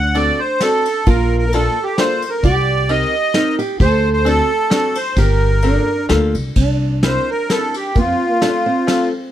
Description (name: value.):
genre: musette waltz.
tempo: 131 BPM.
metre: 3/4.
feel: swing 53% on 8ths.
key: G minor.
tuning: A4 = 440 Hz.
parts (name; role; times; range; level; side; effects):
accordion; melody; 0.0-9.1 s; F4 to F#5; -18 LUFS; right 1 dB; light tremolo tuning.
nylon-string guitar; second line; 0.0-9.3 s; C4 to Bb4; -22 LUFS; right 4 dB; none.
upright bass; bass; 0.0-8.1 s; G1 to F2; -17 LUFS; equal; none.
open-back banjo; accompaniment; 0.1-9.1 s; A3 to Bb4; -21 LUFS; left 3 dB; none.
soft brush drum kit; drums; 0.1-9.0 s; crash cymbal, kick drum, ride cymbal, snare drum; -21 LUFS; equal; none.
room: light reverb.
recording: dark, warm production.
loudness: -14 LUFS.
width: side -11 dB against mid.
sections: 0.0-6.6 A section; 6.6-9.3 B section.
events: none.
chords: 0.0 D7; 1.1 Bbmaj7; 2.4 Cm7; 3.8 D7; 5.2 Gm9; 6.6 C7; 8.0 F.